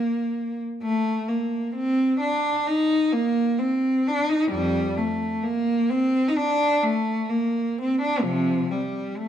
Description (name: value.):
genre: classical, baroque-style suite movement for unaccompanied cello.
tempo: 65 BPM.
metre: 4/4.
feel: rubato.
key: unclear.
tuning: A4 = 442 Hz.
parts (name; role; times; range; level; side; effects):
rich cello; solo; 0.0-9.3 s; F2 to Eb4; -21 LUFS; equal; none.
room: moderate recital hall reverb, RT60 1.5 s.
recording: minimal, uncompressed stereo recording.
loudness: -21 LUFS.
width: side -10 dB against mid.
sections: 0.0-9.3 A section.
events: none.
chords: none.